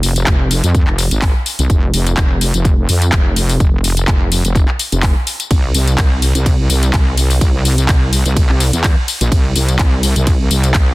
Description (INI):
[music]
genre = bass house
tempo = 126 BPM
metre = 4/4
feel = swing 54% on 16ths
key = F harmonic minor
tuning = A4 = 440 Hz
[part]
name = wobble bass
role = bass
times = 0.0-10.9 s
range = F1 to F2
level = -14 LUFS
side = equal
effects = chorus, tube saturation, sidechain pumping
[part]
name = garage drum kit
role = drums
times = 0.0-10.8 s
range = handclaps, hi-hat, ride cymbal, tambourine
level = -19 LUFS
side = left 1 dB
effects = none
[part]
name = electronic kick drum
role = drums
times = 0.3-10.8 s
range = none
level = -13 LUFS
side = equal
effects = none
[sound]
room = little or no reverb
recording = dense, heavily limited modern master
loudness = -11 LUFS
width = side -21 dB against mid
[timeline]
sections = 0.0-10.9 A section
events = none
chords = none